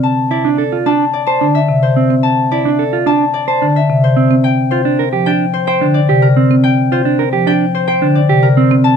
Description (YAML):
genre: classical, minimalist pattern music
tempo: 109 BPM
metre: 4/4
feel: straight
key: unclear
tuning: A4 = 440 Hz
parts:
  - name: concert harp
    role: melody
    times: 0.0-9.0 s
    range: Bb4 to A5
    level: -16 LUFS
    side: left 8 dB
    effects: none
  - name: marimba with soft mallets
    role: accompaniment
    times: 0.0-8.9 s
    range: C3 to C4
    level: -14 LUFS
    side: equal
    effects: none
  - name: mellow electric guitar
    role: arpeggios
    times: 0.3-8.7 s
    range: C4 to C5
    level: -15 LUFS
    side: right 11 dB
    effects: none
room: moderate large studio reverb, RT60 0.8 s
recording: close, detailed microphones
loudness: -10 LUFS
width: side -7 dB against mid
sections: 0.0-9.0 A section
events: none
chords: 0.0 Fmaj7 (rootless); 4.4 Gm7